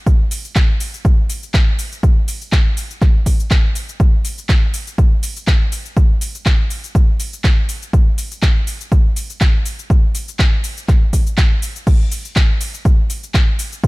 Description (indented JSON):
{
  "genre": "house",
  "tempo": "122 BPM",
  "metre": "4/4",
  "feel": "swing 54% on 16ths",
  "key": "none",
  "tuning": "none",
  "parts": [
    { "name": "electronic kick drum", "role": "drums", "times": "0.1-13.9 s", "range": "none", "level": "-13 LUFS", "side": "equal", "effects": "none" },
    { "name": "house drum kit", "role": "drums", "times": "0.1-13.9 s", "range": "crash cymbal, handclaps, hi-hat, shaker", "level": "-24 LUFS", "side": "equal", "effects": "none" }
  ],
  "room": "digital ambience",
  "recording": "none",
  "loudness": "-14 LUFS",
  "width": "side -22 dB against mid",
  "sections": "0.0-13.9 A section",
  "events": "none",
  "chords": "none"
}